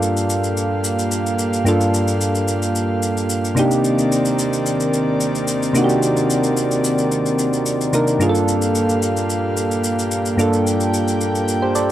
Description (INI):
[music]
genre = amapiano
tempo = 110 BPM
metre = 4/4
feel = straight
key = G minor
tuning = A4 = 438 Hz
[part]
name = soft electric-piano-like synth keys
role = accompaniment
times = 0.0-11.9 s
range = G2 to D5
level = -18 LUFS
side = equal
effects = chorus
[part]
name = airy breathy pad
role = sustained chords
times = 0.0-11.9 s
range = Eb3 to G5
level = -22 LUFS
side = equal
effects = chorus
[part]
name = shaker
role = drums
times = 0.0-11.9 s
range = none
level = -27 LUFS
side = left 2 dB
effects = none
[sound]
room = light reverb, digital ambience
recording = dry, gritty hardware recording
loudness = -16 LUFS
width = side -12 dB against mid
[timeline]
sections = 0.0-11.9 A section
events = none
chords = 0.0 Gm7; 3.6 Cm9; 8.2 Gm7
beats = 0.03 0.57 1.12 | 1.66 2.21 2.75 3.30 | 3.85 4.39 4.94 5.48 | 6.03 6.57 7.12 7.66 | 8.21 8.75 9.30 9.85 | 10.39 10.94 11.48